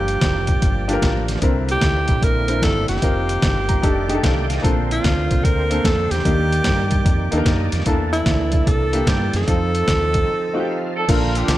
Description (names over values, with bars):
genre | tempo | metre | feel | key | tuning
uptempo gospel | 149 BPM | 4/4 | swing 66% on 8ths | unclear | A4 = 438 Hz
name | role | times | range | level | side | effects
bright alto saxophone | melody | 0.0-10.9 s | E4 to Bb4 | -23 LUFS | equal | none
warm upright piano | accompaniment | 0.0-11.6 s | G2 to Bb5 | -24 LUFS | left 2 dB | none
overdriven tonewheel organ | sustained chords | 0.0-11.6 s | D3 to G5 | -27 LUFS | right 4 dB | slow rotary speaker, chorus vibrato
deep dub fingered electric bass | bass | 0.0-11.6 s | F1 to G2 | -22 LUFS | equal | none
trip hop sampler-style drum kit | drums | 0.1-11.6 s | crash cymbal, hi-hat, kick drum, snare drum | -20 LUFS | equal | none
mellow horn section | melody | 11.0-11.6 s | D4 to Bb4 | -22 LUFS | right 1 dB | none
room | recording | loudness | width
light reverb | none | -16 LUFS | side -15 dB against mid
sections
0.0-11.1 A section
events
upright piano fill 3.4-4.6; tonewheel organ fill 4.0-4.6, 7.1-7.9, 10.3-11.1; break 10.3-11.1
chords
0.0 Gm7; 1.4 C9; 3.0 F7sus4; 3.8 F13; 4.6 Bbmaj9; 6.3 Ebmaj7; 7.9 C13; 9.5 F7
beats
0.22 0.62 1.02 | 1.42 1.83 2.23 2.63 | 3.03 3.44 3.84 4.24 | 4.64 5.04 5.45 5.85 | 6.25 6.66 7.06 7.46 | 7.86 8.27 8.67 9.07 | 9.47 9.88 10.28 10.68 | 11.08 11.49